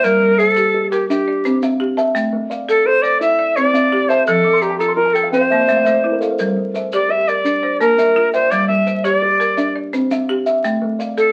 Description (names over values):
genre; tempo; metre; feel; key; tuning
southern african traditional, mbira-style interlocking cycle; 113 BPM (dotted quarters); 12/8; straight; G dorian; A4 = 439 Hz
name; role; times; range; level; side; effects
bright reedy Native American-style cedar flute; melody; 0.0-11.3 s; G4 to E5; -17 LUFS; equal; none
folk marimba with hard mallets; arpeggios; 0.0-11.3 s; F3 to A5; -24 LUFS; equal; none
kalimba; arpeggios; 0.0-11.3 s; F3 to D6; -23 LUFS; equal; none
maracas; percussion; 0.0-11.3 s; none; -40 LUFS; equal; none
room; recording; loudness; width
moderate studio reverb, RT60 0.5 s; very old 78 rpm record, vinyl crackle; -16 LUFS; mono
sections
0.0-11.3 A section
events
kalimba fill 4.3-6.4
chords
0.0 Gm; 1.1 C; 2.2 Am; 3.2 C; 4.3 F; 5.3 Am; 6.4 Gm; 7.4 Bb; 8.5 Gm; 9.6 C; 10.6 A5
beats
| 0.04 0.57 1.10 1.63 | 2.15 2.68 3.21 3.74 | 4.27 4.80 5.33 5.86 | 6.39 6.92 7.45 7.98 | 8.51 9.04 9.57 10.11 | 10.64 11.17